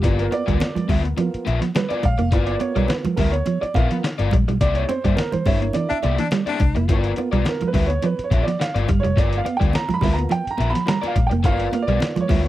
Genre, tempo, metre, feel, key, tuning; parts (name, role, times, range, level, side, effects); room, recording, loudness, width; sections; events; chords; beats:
funk; 105 BPM; 4/4; straight; A4 = 441 Hz
crunchy overdriven guitar; accompaniment; 0.0-12.5 s; Bb3 to E5; -26 LUFS; left 6 dB
dark upright piano; stabs; 0.0-12.5 s; A#3 to B5; -25 LUFS; right 4 dB; slapback echo
vintage muted picked electric bass; bass; 0.0-12.5 s; F1 to G2; -22 LUFS; left 1 dB
trip hop sampler-style drum kit; drums; 0.0-12.5 s; hi-hat, kick drum, snare drum; -22 LUFS; left 1 dB
congas; percussion; 0.0-12.4 s; -32 LUFS; right 4 dB
clean electric guitar; riff; 0.2-12.4 s; E3 to C4; -25 LUFS; right 5 dB; spring reverb
breathy baritone saxophone; second line; 5.9-6.9 s; D4; -25 LUFS; left 6 dB
little or no reverb; dry, close 1970s-style studio recording; -18 LUFS; side -14 dB against mid
0.0-12.5 A section
upright piano solo 0.0-12.5; band accent 4.6-6.9
0.0 G7#9; 4.6 C9; 6.9 G7#9
| 0.04 0.61 1.19 1.76 | 2.33 2.90 3.47 4.04 | 4.61 5.18 5.75 6.32 | 6.89 7.46 8.03 8.60 | 9.17 9.74 10.31 10.88 | 11.45 12.02